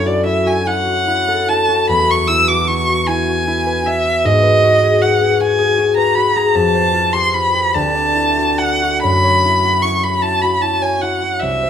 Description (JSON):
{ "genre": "classical, impressionist duo for violin and harp", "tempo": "45-53 BPM (dotted quarters)", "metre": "6/8", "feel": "rubato", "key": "unclear", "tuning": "A4 = 440 Hz", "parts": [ { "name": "rich violin", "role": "melody", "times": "0.0-11.7 s", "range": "D5 to E6", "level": "-15 LUFS", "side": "equal", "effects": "none" }, { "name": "concert harp", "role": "accompaniment", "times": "0.0-11.7 s", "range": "C2 to D5", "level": "-17 LUFS", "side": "left 2 dB", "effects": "none" } ], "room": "light reverb", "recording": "close, detailed microphones", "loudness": "-12 LUFS", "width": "side -8 dB against mid", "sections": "0.0-11.7 A section", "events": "none", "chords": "0.0 F#m7; 1.9 Eadd9; 4.3 G#m7; 6.6 Fadd9; 7.8 Dadd9; 9.0 F#5" }